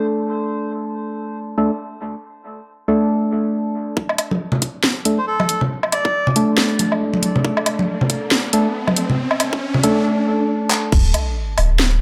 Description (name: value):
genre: deep dubstep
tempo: 138 BPM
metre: 4/4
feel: swing 58% on 16ths, half-time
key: unclear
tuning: A4 = 437 Hz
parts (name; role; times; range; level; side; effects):
- percussive organ stab; stabs; 0.0-10.9 s; A3 to A4; -22 LUFS; equal; chorus, dub echo
- saturated sub bass; bass; 4.0-12.0 s; D1 to C2; -25 LUFS; equal; high-pass filter
- electronic kick drum; drums; 4.0-11.0 s; none; -21 LUFS; equal; overdrive, high-pass filter on kick, small room reverb
- riser and sub drop; sound effects; 7.0-12.0 s; none; -28 LUFS; equal; none
- garage drum kit; drums; 4.1-11.9 s; crash cymbal, handclaps, hi-hat, snare drum, woodblock; -22 LUFS; equal; overdrive, small room reverb
- congas; percussion; 4.3-9.8 s; none; -23 LUFS; equal; none
- melodica; melody; 5.2-6.3 s; A4 to D5; -28 LUFS; equal; dub echo
room: moderate spring reverb, RT60 1.3 s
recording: none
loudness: -19 LUFS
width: mono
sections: 0.0-4.0 A section; 4.0-10.9 B section; 10.9-12.0 C section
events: filter sweep on synth stab 0.0-4.0, 4.0-10.9; build-up 4.0-10.9; riser 7.0-10.1; drum fill 10.7; drop 10.9-12.0; impact 10.9-12.0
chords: 0.0 D5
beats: 0.06 | 0.49 0.92 1.36 1.79 | 2.23 2.66 3.10 3.53 | 3.97 4.40 4.84 5.27 | 5.71 6.14 6.58 7.01 | 7.45 7.88 8.31 8.75 | 9.19 9.62 10.05 10.49 | 10.92 11.36 11.79